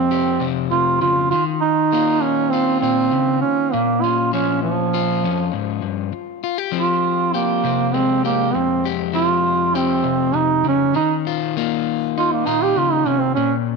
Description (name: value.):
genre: highlife.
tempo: 100 BPM.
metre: 4/4.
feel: straight.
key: F minor.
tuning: A4 = 441 Hz.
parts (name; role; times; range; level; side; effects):
warm duduk; melody; 0.0-13.5 s; F3 to G4; -18 LUFS; right 6 dB; none.
electric guitar at the edge of break-up; accompaniment; 0.0-13.8 s; F2 to G4; -21 LUFS; left 14 dB; none.
room: moderate plate reverb, RT60 2.8 s.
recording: 1960s-style stereo with parts hard left and right.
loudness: -16 LUFS.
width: side -4 dB against mid.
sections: 0.0-6.1 A section; 6.1-13.8 B section.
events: duduk solo 6.1-13.8.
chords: 0.0 Fmadd9; 1.3 Ebsus2; 3.7 Bbm; 6.1 Fmadd9; 11.0 Ebsus2.